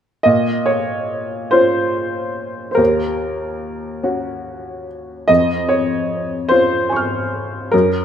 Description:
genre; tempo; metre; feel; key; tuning
neoclassical minimalist piano; 48 BPM (dotted quarters); 6/8; rubato; unclear; A4 = 439 Hz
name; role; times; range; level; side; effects
clear upright piano; solo; 0.2-8.0 s; Eb2 to F6; -16 LUFS; equal; none
room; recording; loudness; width
light reverb; minimal, uncompressed stereo recording; -15 LUFS; side -8 dB against mid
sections
0.3-8.0 A section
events
none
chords
0.3 Bbmadd9; 2.8 Ebm7; 5.3 Dbmaj7/F

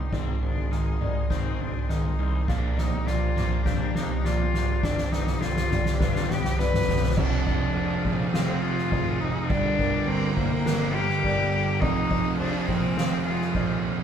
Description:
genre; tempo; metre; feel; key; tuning
post-rock; 103 BPM; 4/4; straight; unclear; A4 = 440 Hz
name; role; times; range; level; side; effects
clear cello; melody; 0.0-13.8 s; Bb3 to B4; -30 LUFS; left 4 dB; none
analog string pad; sustained chords; 0.0-14.0 s; G4 to Eb6; -39 LUFS; left 2 dB; ensemble chorus
twangy electric guitar; arpeggios; 0.0-14.0 s; F2 to D5; -39 LUFS; left 7 dB; none
overdriven electric guitar; riff; 0.0-7.2 s; G2 to Bb3; -35 LUFS; left 7 dB; none
fuzz picked electric bass; bass; 0.0-14.0 s; E1 to F2; -33 LUFS; equal; overdrive
felt-muted upright piano; arpeggios; 0.1-14.0 s; Bb4 to F5; -36 LUFS; left 1 dB; none
soft-mallet drum kit; drums; 0.1-14.0 s; crash cymbal, kick drum, snare drum, toms; -26 LUFS; right 1 dB; none
thick fuzz guitar; riff; 7.2-14.0 s; F2 to G3; -27 LUFS; right 4 dB; distortion
room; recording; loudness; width
moderate studio reverb, RT60 0.5 s; band playing live in one room; -22 LUFS; side -8 dB against mid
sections
0.0-7.2 A section; 7.2-14.0 B section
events
build-up 0.0-7.2; drum fill 0.0-7.2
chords
0.1 Ab; 2.5 Bb6; 4.8 G; 7.2 Fm7; 9.5 Gm; 11.8 Fm7

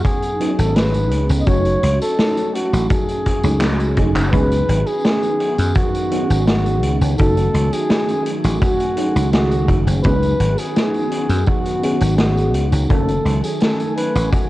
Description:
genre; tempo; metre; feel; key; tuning
vaporwave; 84 BPM; 4/4; straight; F# dorian; A4 = 440 Hz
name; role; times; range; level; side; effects
dark flugelhorn; melody; 0.0-14.5 s; F#4 to D#5; -22 LUFS; equal; tape echo
mellow FM electric piano; accompaniment; 0.0-14.5 s; F#3 to A4; -22 LUFS; equal; ensemble chorus
kick drum; drums; 0.0-14.5 s; none; -19 LUFS; equal; none
vintage drum kit; drums; 0.0-14.5 s; handclaps, hi-hat, snare drum, tambourine; -23 LUFS; equal; none
dry thumbed slap bass; bass; 0.6-14.3 s; F#1 to F#2; -17 LUFS; equal; none
warbly tape-like pad; sustained chords; 4.9-14.5 s; D#3 to G#5; -27 LUFS; equal; chorus, built-in reverb
room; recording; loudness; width
light reverb, small room ambience; worn, warbling old tape, cassette tape, warbly pitch drift; -15 LUFS; side -16 dB against mid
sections
0.0-14.5 A section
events
drum fill 3.6-4.3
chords
0.0 C#9sus4; 1.5 F#m69; 4.3 C#9sus4; 7.2 F#m69; 10.0 C#9sus4; 12.9 F#m69

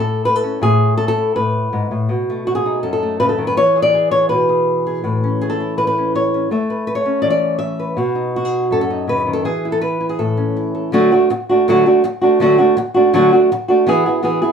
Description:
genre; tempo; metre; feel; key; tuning
flamenco; 163 BPM; 4/4; straight; A major; A4 = 440 Hz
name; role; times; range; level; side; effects
flamenco guitar; solo; 0.0-14.5 s; F#2 to E5; -14 LUFS; equal; none
room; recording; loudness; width
moderate studio ambience, RT60 0.5 s; band playing live in one room; -14 LUFS; side -7 dB against mid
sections
0.0-10.9 A section; 10.9-14.5 B section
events
none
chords
0.0 Asus2; 2.1 B7; 3.6 E; 5.0 Aadd9; 8.0 B; 9.4 N.C.; 10.2 A; 10.9 D; 13.9 E

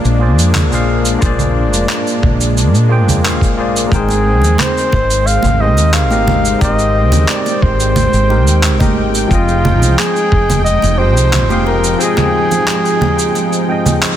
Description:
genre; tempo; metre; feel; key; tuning
sunset chillout; 89 BPM; 4/4; straight; Ab lydian; A4 = 439 Hz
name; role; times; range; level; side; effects
tine electric piano; accompaniment; 0.0-14.2 s; F3 to G5; -18 LUFS; moving between left 5 dB and right 6 dB; overdrive, auto-pan, vintage 12-bit sampler grit, digital delay
lush unison pad; sustained chords; 0.0-14.2 s; F3 to G5; -20 LUFS; equal; chorus
woody fretless electric bass; bass; 0.0-11.9 s; F1 to Bb2; -14 LUFS; equal; ensemble chorus
electronic shaker, handclaps and congas; drums; 0.0-14.2 s; none; -18 LUFS; right 1 dB; none
electronic kick drum; drums; 1.2-10.5 s; none; -15 LUFS; equal; none
mellow flugelhorn; melody; 3.9-14.2 s; F4 to F5; -16 LUFS; equal; digital delay
congas; percussion; 4.1-14.0 s; none; -24 LUFS; right 4 dB; none
room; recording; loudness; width
light reverb, digital ambience; dense, heavily limited modern master; -10 LUFS; side -11 dB against mid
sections
0.0-14.2 A section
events
none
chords
0.0 Bb9; 3.9 Abmaj7; 9.3 Fm9

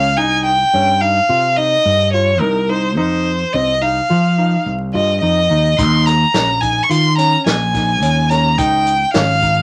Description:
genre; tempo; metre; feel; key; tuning
progressive instrumental, band music in an uneven meter; 107 BPM; 5/4; straight; unclear; A4 = 438 Hz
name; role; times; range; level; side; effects
warm violin; melody; 0.0-9.6 s; Bb4 to Db6; -17 LUFS; equal; none
dark concert grand piano; arpeggios; 0.0-9.6 s; C4 to F4; -25 LUFS; equal; none
overdriven fingered electric bass; bass; 0.0-9.6 s; Ab1 to F3; -20 LUFS; equal; none
vintage drum kit; drums; 5.8-9.6 s; hi-hat, kick drum, snare drum; -22 LUFS; equal; none
room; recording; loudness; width
light reverb; vinyl crackle; -15 LUFS; mono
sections
0.0-9.6 A section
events
none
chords
0.2 Cm; 3.0 F5; 5.8 Eb7sus4; 8.6 Dbadd9

